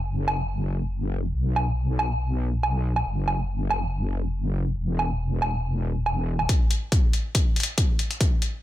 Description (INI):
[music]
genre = heavy wobble dubstep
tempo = 140 BPM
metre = 4/4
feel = swing 54% on 16ths, half-time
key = unclear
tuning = A4 = 439 Hz
[part]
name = wobble bass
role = bass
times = 0.0-6.5 s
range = E1 to B1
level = -25 LUFS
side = equal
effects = chorus, overdrive
[part]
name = electronic woodblock and hi-hat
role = drums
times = 0.3-8.5 s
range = none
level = -28 LUFS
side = right 1 dB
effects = high-pass filter on perc, high-pass filter on hats, high-pass filter on room
[part]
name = electronic kick drum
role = drums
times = 6.5-8.3 s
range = none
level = -21 LUFS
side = equal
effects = none
[sound]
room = little or no reverb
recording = none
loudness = -22 LUFS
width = side -14 dB against mid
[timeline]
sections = 0.0-6.5 A section; 6.5-8.6 B section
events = build-up 6.5-8.6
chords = none